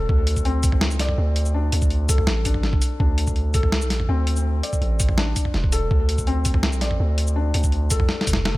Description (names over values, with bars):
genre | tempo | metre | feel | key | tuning
half-time drum and bass | 165 BPM | 4/4 | half-time | D minor | A4 = 443 Hz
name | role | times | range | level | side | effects
felt-muted upright piano | arpeggios | 0.0-8.6 s | A3 to D5 | -28 LUFS | left 4 dB | vintage 12-bit sampler grit, digital delay
long sustained 808-style bass | bass | 0.0-8.6 s | E1 to D2 | -21 LUFS | equal | none
electronic kick drum | drums | 0.1-8.6 s | none | -22 LUFS | equal | none
boom bap sampler-style drum kit | drums | 0.3-8.5 s | hi-hat, shaker, snare drum, toms | -25 LUFS | equal | none
room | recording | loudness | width
digital ambience | none | -18 LUFS | side -18 dB against mid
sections
0.0-8.6 A section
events
drum fill 8.1-8.6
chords
0.0 D5